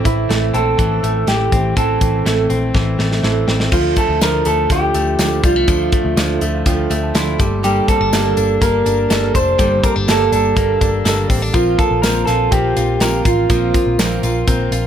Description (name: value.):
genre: jangly indie pop.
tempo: 123 BPM.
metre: 4/4.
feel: straight.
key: D minor.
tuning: A4 = 440 Hz.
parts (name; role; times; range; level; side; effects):
mellow reed electric piano; accompaniment; 0.0-14.9 s; Bb3 to C6; -24 LUFS; right 6 dB; none.
picked steel-string acoustic guitar; accompaniment; 0.0-14.9 s; G2 to A4; -24 LUFS; right 6 dB; none.
direct-recorded clean electric guitar; arpeggios; 0.0-14.9 s; E3 to Bb4; -22 LUFS; left 4 dB; none.
electric guitar through a small old amp; melody; 0.1-14.2 s; E4 to C5; -18 LUFS; right 1 dB; tape echo.
vintage muted picked electric bass; bass; 0.1-14.9 s; F1 to D2; -20 LUFS; left 1 dB; none.
modern studio drum kit; drums; 0.1-14.8 s; crash cymbal, hi-hat, kick drum, snare drum; -19 LUFS; equal; none.
tambourine; percussion; 3.7-14.8 s; none; -32 LUFS; left 10 dB; none.
room: light reverb.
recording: none.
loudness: -13 LUFS.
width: side -9 dB against mid.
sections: 0.0-3.7 A section; 3.7-14.9 B section.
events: drum fill 2.8-3.7; reed electric piano fill 6.2-7.6.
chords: 0.0 Am; 3.7 Dmadd9; 7.4 Gmadd9; 11.5 Bbsus2.